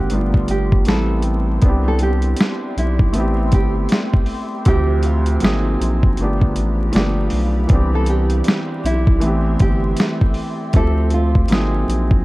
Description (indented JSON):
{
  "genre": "lo-fi hip hop",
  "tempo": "79 BPM",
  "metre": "4/4",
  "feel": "swing 61% on 16ths",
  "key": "unclear",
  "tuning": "A4 = 436 Hz",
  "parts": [
    { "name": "nylon-string guitar", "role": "melody", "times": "0.0-12.2 s", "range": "E4 to A4", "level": "-26 LUFS", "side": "right 2 dB", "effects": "low-pass filter, analog delay" },
    { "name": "felt-muted upright piano", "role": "accompaniment", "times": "0.0-12.2 s", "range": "D2 to F#5", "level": "-22 LUFS", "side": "equal", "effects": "low-pass filter" },
    { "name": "granular cloud pad", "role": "sustained chords", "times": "0.0-12.2 s", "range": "G4 to C6", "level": "-31 LUFS", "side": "equal", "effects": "built-in reverb, low-pass filter" },
    { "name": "saturated sub bass", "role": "bass", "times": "0.0-12.2 s", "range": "G1 to D2", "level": "-18 LUFS", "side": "equal", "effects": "none" },
    { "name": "dusty soul sampler-style drum kit", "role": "drums", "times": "0.1-12.2 s", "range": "hi-hat, kick drum, snare drum", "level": "-16 LUFS", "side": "equal", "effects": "overdrive" }
  ],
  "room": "digital ambience",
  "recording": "dark, warm production, vinyl crackle",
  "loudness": "-15 LUFS",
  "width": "side -19 dB against mid",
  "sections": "0.0-1.6 A section; 1.6-12.2 B section",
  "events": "none",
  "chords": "0.1 G7; 0.9 Am9; 1.6 Cmaj9; 3.1 Am7; 4.7 Dm11; 5.4 G#9; 6.2 G7; 7.7 Cmaj9; 9.2 Am7; 10.7 Dm11; 11.5 G#9"
}